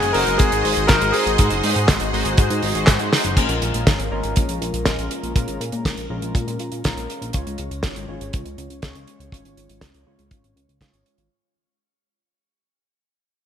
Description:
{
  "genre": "italo disco",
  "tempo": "121 BPM",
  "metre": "4/4",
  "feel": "straight",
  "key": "Bb minor",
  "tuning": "A4 = 441 Hz",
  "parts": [
    { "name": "warm concert grand piano", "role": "melody", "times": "0.0-2.8 s", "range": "Ab4 to Bb4", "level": "-22 LUFS", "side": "left 2 dB", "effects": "ping-pong delay, shimmer reverb" },
    { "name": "string machine, full ensemble", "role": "sustained chords", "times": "0.0-3.3 s", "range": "Ab4 to C6", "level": "-26 LUFS", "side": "equal", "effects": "ensemble chorus, shimmer reverb" },
    { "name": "chorused polysynth", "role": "stabs", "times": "0.0-11.3 s", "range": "Ab3 to Db5", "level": "-27 LUFS", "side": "left 1 dB", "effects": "digital delay, shimmer reverb" },
    { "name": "chorused synth bass", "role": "bass", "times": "0.0-11.3 s", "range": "Gb1 to Bb2", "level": "-26 LUFS", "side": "equal", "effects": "tube saturation" },
    { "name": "damped 70s drum kit", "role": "drums", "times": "0.0-11.3 s", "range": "crash cymbal, handclaps, hi-hat, snare drum", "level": "-23 LUFS", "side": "right 1 dB", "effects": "none" },
    { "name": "kick drum", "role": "drums", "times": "0.4-10.9 s", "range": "none", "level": "-18 LUFS", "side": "equal", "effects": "none" }
  ],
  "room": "moderate plate reverb, RT60 2.4 s",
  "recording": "bright 1980s-style digital production",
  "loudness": "-18 LUFS",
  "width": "side -9 dB against mid",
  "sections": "0.0-3.4 A section; 3.4-11.3 B section",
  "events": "drum fill 3.1; fade-out 3.4-11.3; filter sweep on analog polysynth 3.4-11.3",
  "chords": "0.0 Ab7; 3.4 Bbm7; 7.3 Db"
}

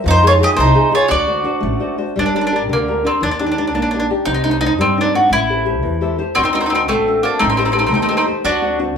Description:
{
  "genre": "italian folk, Italian serenade",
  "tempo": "115 BPM (dotted quarters)",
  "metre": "6/8",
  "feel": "rubato",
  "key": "G harmonic minor",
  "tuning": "A4 = 441 Hz",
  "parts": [
    { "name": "flamenco guitar", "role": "accompaniment", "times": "0.0-9.0 s", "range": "C3 to E5", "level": "-20 LUFS", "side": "left 2 dB", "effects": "none" },
    { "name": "mandolin", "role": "melody", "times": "0.1-8.8 s", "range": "A3 to Eb5", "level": "-16 LUFS", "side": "equal", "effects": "none" },
    { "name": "bowl-back mandolin", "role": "second line", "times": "0.1-1.9, 6.3-8.8 s", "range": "C4 to G4", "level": "-20 LUFS", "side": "right 3 dB", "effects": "none" },
    { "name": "upright bass", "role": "bass", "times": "0.1-9.0 s", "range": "G1 to G2", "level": "-21 LUFS", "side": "equal", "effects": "none" }
  ],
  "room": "wet large studio reverb, RT60 0.9 s",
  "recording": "band playing live in one room",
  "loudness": "-13 LUFS",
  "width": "side -7 dB against mid",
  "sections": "0.0-2.2 A section; 2.2-9.0 B section",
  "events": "nylon-string guitar fill 5.8-6.4",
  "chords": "0.1 Fm7; 1.1 D7; 2.2 Gm; 3.2 Ebmaj7; 4.3 Cmadd9; 5.3 Am7; 6.4 D7; 7.4 Am7b5; 8.5 D7"
}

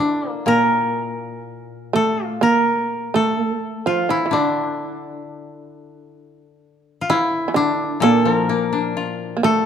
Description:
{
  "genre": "japanese traditional, Japanese chamber music",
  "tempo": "60-66 BPM",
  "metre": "4/4",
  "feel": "rubato",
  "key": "unclear",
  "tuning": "A4 = 441 Hz",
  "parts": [
    { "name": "koto", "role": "melody", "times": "0.0-9.7 s", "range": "D4 to Bb4", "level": "-21 LUFS", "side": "left 2 dB", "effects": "none" },
    { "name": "shamisen", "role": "second line", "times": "0.0-9.7 s", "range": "D3 to Bb3", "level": "-21 LUFS", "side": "right 4 dB", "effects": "none" },
    { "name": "koto", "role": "accompaniment", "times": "0.5-9.7 s", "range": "Bb2 to F4", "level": "-25 LUFS", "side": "left 7 dB", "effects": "none" }
  ],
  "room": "moderate recital hall reverb, RT60 1.7 s",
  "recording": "dark, warm production",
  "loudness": "-17 LUFS",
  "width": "side -8 dB against mid",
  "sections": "0.0-9.7 A section",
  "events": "none",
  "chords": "none"
}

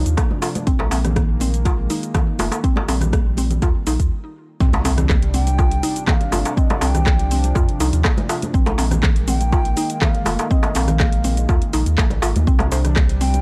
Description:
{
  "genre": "afro house",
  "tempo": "122 BPM",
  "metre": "4/4",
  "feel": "straight",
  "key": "C minor",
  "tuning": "A4 = 440 Hz",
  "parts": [
    { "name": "warm analog pad", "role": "sustained chords", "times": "0.0-13.4 s", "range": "C3 to D4", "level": "-31 LUFS", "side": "equal", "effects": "chorus, sidechain pumping" },
    { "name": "mallet-like synth pluck", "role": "arpeggios", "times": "0.0-13.3 s", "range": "Bb3 to C5", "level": "-29 LUFS", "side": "equal", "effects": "chorus, sidechain pumping, analog delay" },
    { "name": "warm sub bass", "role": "bass", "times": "0.0-13.4 s", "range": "F1 to F2", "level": "-22 LUFS", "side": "equal", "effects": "sidechain pumping" },
    { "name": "afro-pop drum kit", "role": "drums", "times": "0.1-13.4 s", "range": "handclaps, hi-hat, rim click, shaker", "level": "-29 LUFS", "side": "equal", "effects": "overdrive" },
    { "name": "electronic kick drum", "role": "drums", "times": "0.2-13.1 s", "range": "none", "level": "-20 LUFS", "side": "equal", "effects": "none" },
    { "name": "congas", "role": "percussion", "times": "0.2-13.4 s", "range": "none", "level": "-29 LUFS", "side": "equal", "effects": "none" },
    { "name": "darbuka", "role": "percussion", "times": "0.2-12.8 s", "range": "none", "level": "-28 LUFS", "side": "equal", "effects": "none" },
    { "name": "impact", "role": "sound effects", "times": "4.6-6.6 s", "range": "none", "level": "-31 LUFS", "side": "equal", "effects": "none" },
    { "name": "breathy bass bansuri", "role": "melody", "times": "5.3-13.4 s", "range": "Eb5 to G5", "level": "-30 LUFS", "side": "equal", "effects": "none" }
  ],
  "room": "little or no reverb",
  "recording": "dry, gritty hardware recording",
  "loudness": "-18 LUFS",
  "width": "mono",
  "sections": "0.0-4.6 A section; 4.6-13.4 B section",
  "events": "stop 4.1-4.6; drop 4.6-13.4; impact 4.6-6.6",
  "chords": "0.0 Cmadd9; 0.7 Bb9sus4; 4.6 Csus2; 8.5 Bb9sus4; 12.5 Csus2"
}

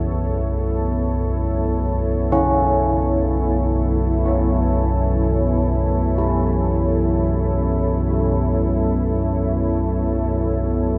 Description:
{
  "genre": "dark ambient drone",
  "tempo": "free time",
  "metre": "none",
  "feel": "none",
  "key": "unclear",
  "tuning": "A4 = 442 Hz",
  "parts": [
    { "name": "deep dark ambient pad", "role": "sustained chords", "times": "0.0-11.0 s", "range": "B3 to C#5", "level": "-25 LUFS", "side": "equal", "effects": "chorus, built-in reverb" },
    { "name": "old church bells", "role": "arpeggios", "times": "0.0-11.0 s", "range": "C#3 to E4", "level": "-28 LUFS", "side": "equal", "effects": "diffuse ambient delay" },
    { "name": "deep rumbling drone", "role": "drone", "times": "0.0-11.0 s", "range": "B1 to F#2", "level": "-23 LUFS", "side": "equal", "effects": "built-in reverb" }
  ],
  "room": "wet cathedral reverb, RT60 6.2 s",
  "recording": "none",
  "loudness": "-20 LUFS",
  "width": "mono",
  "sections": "0.0-11.0 A section",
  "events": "none",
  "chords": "0.0 Bsus2"
}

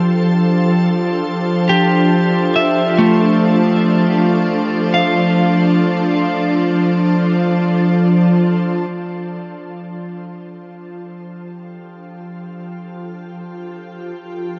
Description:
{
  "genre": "ambient",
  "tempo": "free time",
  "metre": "none",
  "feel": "none",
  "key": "F major",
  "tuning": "A4 = 441 Hz",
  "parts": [
    { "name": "soft additive organ-like pad", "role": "sustained chords", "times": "0.0-14.6 s", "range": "F3 to C5", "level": "-19 LUFS", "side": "equal", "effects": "ensemble chorus, built-in reverb" },
    { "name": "bowed-like drone", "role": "drone", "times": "0.3-14.6 s", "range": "F3 to F4", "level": "-24 LUFS", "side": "equal", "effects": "built-in reverb" },
    { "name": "electric guitar at the edge of break-up", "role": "arpeggios", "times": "1.7-8.7 s", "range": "A3 to F5", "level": "-20 LUFS", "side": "equal", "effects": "diffuse ambient delay" }
  ],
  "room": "wet huge ambient reverb, RT60 7.3 s",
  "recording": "dark, warm production, nothing above 7.5 kHz",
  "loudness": "-15 LUFS",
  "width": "mono",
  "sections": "0.0-8.9 A section; 8.9-14.6 B section",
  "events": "fade-in on ambient pad 8.9-14.6; fade-in on synth drone 8.9-14.6",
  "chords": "0.0 Dm7/F; 8.9 Fadd9"
}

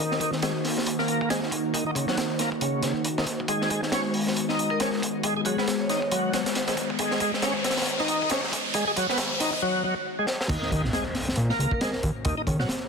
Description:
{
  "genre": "breakbeat, breaks",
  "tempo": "137 BPM",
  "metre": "4/4",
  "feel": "swing 58% on 16ths",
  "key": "Eb minor",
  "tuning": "A4 = 440 Hz",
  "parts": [
    { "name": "warbly tape-like pad", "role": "sustained chords", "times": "0.0-12.9 s", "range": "Eb3 to Gb4", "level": "-30 LUFS", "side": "left 1 dB", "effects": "chorus, built-in reverb, phaser, sidechain pumping" },
    { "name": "bright tonewheel organ", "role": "riff", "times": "0.0-12.7 s", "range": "Db3 to Ab4", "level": "-28 LUFS", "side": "equal", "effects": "overdrive, chorus vibrato, slow rotary speaker, low-pass filter, ping-pong delay" },
    { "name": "crunchy breakbeat drum kit", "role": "drums", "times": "0.1-12.8 s", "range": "crash cymbal, hi-hat, kick drum, snare drum", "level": "-28 LUFS", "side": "equal", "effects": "high-pass filter on kick, high-pass filter on hats, high-pass filter on cymbals, high-pass filter on snare, high-pass filter on room" },
    { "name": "riser and impact", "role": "sound effects", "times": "5.8-12.2 s", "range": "none", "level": "-33 LUFS", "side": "equal", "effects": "none" },
    { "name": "vibraphone with hard mallets", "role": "melody", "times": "4.7-6.1, 11.7-11.9 s", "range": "Ab4 to Db5", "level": "-35 LUFS", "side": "right 1 dB", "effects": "small speaker sound, ping-pong delay" },
    { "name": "fat analog bass", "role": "bass", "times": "10.5-12.7 s", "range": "Bb1 to Bb2", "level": "-25 LUFS", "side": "equal", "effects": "none" }
  ],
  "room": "moderate plate reverb, RT60 2.0 s, small room ambience",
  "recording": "dense, heavily limited modern master",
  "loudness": "-23 LUFS",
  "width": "side -5 dB against mid",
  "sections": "0.0-10.5 A section; 10.5-12.9 B section",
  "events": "build-up 0.0-10.5; riser 5.8-9.6; drum fill 10.3; drop 10.5-12.9; impact 10.5-12.2",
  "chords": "0.0 Ebm7; 3.3 Abm7; 10.5 Ebm7"
}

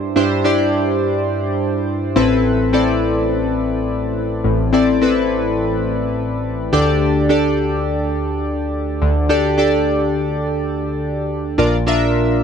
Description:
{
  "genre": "pop",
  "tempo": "105 BPM",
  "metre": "4/4",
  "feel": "straight",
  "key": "unclear",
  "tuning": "A4 = 440 Hz",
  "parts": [
    { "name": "chorused retro synth keys", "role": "solo", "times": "0.0-12.4 s", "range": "A1 to E5", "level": "-15 LUFS", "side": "left 1 dB", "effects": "none" }
  ],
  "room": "light reverb",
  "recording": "dry, close 1970s-style studio recording",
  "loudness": "-15 LUFS",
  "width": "side -7 dB against mid",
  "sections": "0.0-11.6 A section",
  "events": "none",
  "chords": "0.0 Cadd9/G; 2.2 Amadd9; 6.7 Dsus4; 11.6 Bb"
}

